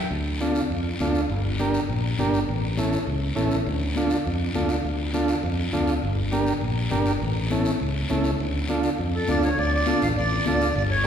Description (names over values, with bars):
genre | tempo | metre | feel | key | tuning
latin, cumbia | 203 BPM | 4/4 | straight | D harmonic minor | A4 = 439 Hz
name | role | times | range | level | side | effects
fingered electric bass | bass | 0.1-11.1 s | G1 to F2 | -26 LUFS | equal | none
congas | percussion | 0.1-10.9 s | none | -32 LUFS | left 3 dB | none
guiro | percussion | 0.1-11.1 s | none | -34 LUFS | left 3 dB | none
combo organ | accompaniment | 0.4-11.1 s | C#4 to Bb4 | -26 LUFS | right 1 dB | none
accordion | melody | 9.1-11.1 s | A4 to F5 | -26 LUFS | right 1 dB | light tremolo tuning
room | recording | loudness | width
wet recital hall reverb, RT60 1.5 s | recorded in a church or concert hall | -22 LUFS | side -8 dB against mid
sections
0.1-9.6 A section; 9.6-11.1 B section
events
none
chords
0.1 Dm; 1.3 Gm; 2.5 A; 3.7 Dm; 6.0 Gm; 7.2 A; 8.4 Dm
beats
| 0.12 0.41 0.71 1.00 | 1.30 1.59 1.89 2.19 | 2.48 2.78 3.07 3.37 | 3.67 3.96 4.26 4.55 | 4.85 5.15 5.44 5.74 | 6.03 6.33 6.62 6.92 | 7.21 7.51 7.81 8.10 | 8.40 8.69 8.99 9.28 | 9.58 9.87 10.17 10.46 | 10.76 11.05